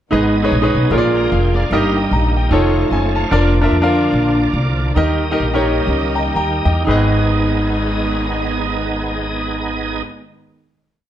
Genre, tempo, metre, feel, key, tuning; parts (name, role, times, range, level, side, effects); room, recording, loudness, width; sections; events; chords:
uptempo gospel; 112-150 BPM; 4/4; swing 59% on 8ths; G# harmonic minor; A4 = 441 Hz
bright concert grand piano; accompaniment; 0.1-10.0 s; G#1 to A#5; -17 LUFS; equal
bright tonewheel organ; sustained chords; 0.1-10.0 s; A3 to A#5; -22 LUFS; right 3 dB; slow rotary speaker, overdrive, chorus vibrato
warm symphonic string section; sustained chords; 0.1-10.0 s; D3 to D#4; -26 LUFS; equal
upright bass; bass; 0.1-10.0 s; E#1 to E#2; -18 LUFS; equal
moderate large studio reverb, RT60 0.9 s; dark, warm production; -14 LUFS; side -11 dB against mid
0.1-6.9 breakdown; 6.9-11.1 final chord
slowing down 3.3-6.9; grand piano fill 5.9-6.9
0.1 G#m; 0.9 A#7; 1.7 D#/G; 2.5 Faug7; 3.3 A#/E#; 5.0 D#; 6.9 G#m